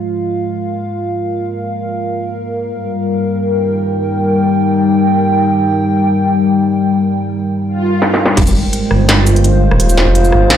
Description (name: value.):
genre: half-time drum and bass.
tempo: 169 BPM.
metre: 4/4.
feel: swing 54% on 16ths, half-time.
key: F minor.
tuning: A4 = 441 Hz.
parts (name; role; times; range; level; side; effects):
dark analog pad; sustained chords; 0.0-10.6 s; G3 to G5; -14 LUFS; left 1 dB; chorus, vintage 12-bit sampler grit, sidechain pumping.
swell; sound effects; 7.7-8.4 s; none; -19 LUFS; right 4 dB; none.
industrial drum kit; drums; 8.0-10.6 s; crash cymbal, hi-hat, rim click, shaker, snare drum; -15 LUFS; equal; overdrive, low-pass filter on snare, low-pass filter on hats, low-pass filter on cymbals, low-pass filter on perc.
dark detuned saw bass; bass; 8.4-10.6 s; Eb1 to Ab1; -12 LUFS; equal; none.
electronic kick drum; drums; 8.4 s; none; -13 LUFS; equal; distortion, overdrive.
room: moderate digital room reverb, RT60 1.1 s, digital ambience.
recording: played on a big sound system in a bare room, large studio reverb.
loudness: -12 LUFS.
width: side -10 dB against mid.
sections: 0.0-8.4 A section; 8.4-10.6 B section.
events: filter sweep on analog synth pad 0.0-8.4; swell 7.7-8.4; drum fill 8.0-8.4; drop 8.4-10.6.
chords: 0.0 Fm; 2.7 Eb; 8.4 Fm.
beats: 0.21 0.56 0.92 | 1.27 1.63 1.98 2.34 | 2.69 3.05 3.40 3.76 | 4.11 4.47 4.82 5.18 | 5.53 5.89 6.24 6.60 | 6.95 7.31 7.66 8.02 | 8.37 8.73 9.08 9.44 | 9.79 10.15 10.50.